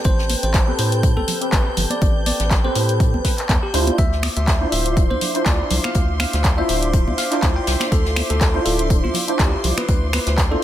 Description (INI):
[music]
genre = deep house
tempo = 122 BPM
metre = 4/4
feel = swing 55% on 16ths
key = unclear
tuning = A4 = 441 Hz
[part]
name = hollow soft pad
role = sustained chords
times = 0.0-10.6 s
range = B4 to D6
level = -32 LUFS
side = left 1 dB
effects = chorus, sidechain pumping
[part]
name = percussive organ stab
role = stabs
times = 0.0-10.6 s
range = C4 to C5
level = -24 LUFS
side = right 1 dB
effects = ensemble chorus, sidechain pumping, ping-pong delay
[part]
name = jazz brush drum kit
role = drums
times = 0.0-10.5 s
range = hi-hat, snare drum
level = -30 LUFS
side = left 3 dB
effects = high-pass filter on hats, high-pass filter on snare, high-pass filter on room
[part]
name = string machine, violins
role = texture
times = 0.0-10.6 s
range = C6 to G6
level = -32 LUFS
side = equal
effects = ensemble chorus, sidechain pumping
[part]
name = bell-like tine electric piano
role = melody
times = 0.1-10.6 s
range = F4 to G5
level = -27 LUFS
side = right 1 dB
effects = ping-pong delay
[part]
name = rubbery square bass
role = bass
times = 0.1-10.6 s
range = D1 to A2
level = -22 LUFS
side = equal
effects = none
[part]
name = deep house drum kit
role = drums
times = 0.1-10.5 s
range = finger snaps, handclaps, hi-hat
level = -24 LUFS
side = left 1 dB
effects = none
[part]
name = electronic kick drum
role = drums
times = 0.1-10.5 s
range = none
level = -18 LUFS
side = equal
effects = none
[part]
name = congas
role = percussion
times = 0.3-10.6 s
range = none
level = -30 LUFS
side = right 1 dB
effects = none
[sound]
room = small room ambience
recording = none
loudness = -16 LUFS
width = side -12 dB against mid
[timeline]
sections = 0.0-10.6 A section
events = filter sweep on synth stab 0.0-10.6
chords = 0.0 Am9; 3.7 Dm9